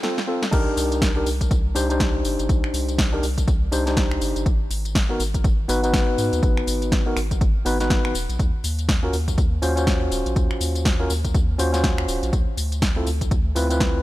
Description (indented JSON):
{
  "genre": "deep house",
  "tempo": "122 BPM",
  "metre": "4/4",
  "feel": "swing 60% on 16ths",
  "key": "unclear",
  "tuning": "A4 = 440 Hz",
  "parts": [
    { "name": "overdriven tine electric piano", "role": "stabs", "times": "0.0-14.0 s", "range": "Cb4 to C5", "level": "-25 LUFS", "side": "left 1 dB", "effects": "ping-pong delay" },
    { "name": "deep house drum kit", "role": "drums", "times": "0.0-13.9 s", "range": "crash cymbal, finger snaps, hi-hat, snare drum, tambourine", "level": "-27 LUFS", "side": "equal", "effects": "none" },
    { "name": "round analog bass", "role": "bass", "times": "0.5-14.0 s", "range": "Eb1 to Ab2", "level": "-25 LUFS", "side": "equal", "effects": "sidechain pumping" },
    { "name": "electronic kick drum", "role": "drums", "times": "0.5-13.9 s", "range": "none", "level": "-21 LUFS", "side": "equal", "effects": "none" }
  ],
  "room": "digital ambience",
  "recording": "none",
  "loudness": "-19 LUFS",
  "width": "side -16 dB against mid",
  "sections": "0.5-14.0 A section",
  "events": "break 0.0-0.5; drum fill 0.0-0.5; drop 0.5-14.0",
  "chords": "0.0 F/C; 0.5 Cm7; 4.5 Abm7; 8.1 Ebm7; 12.3 Dm7"
}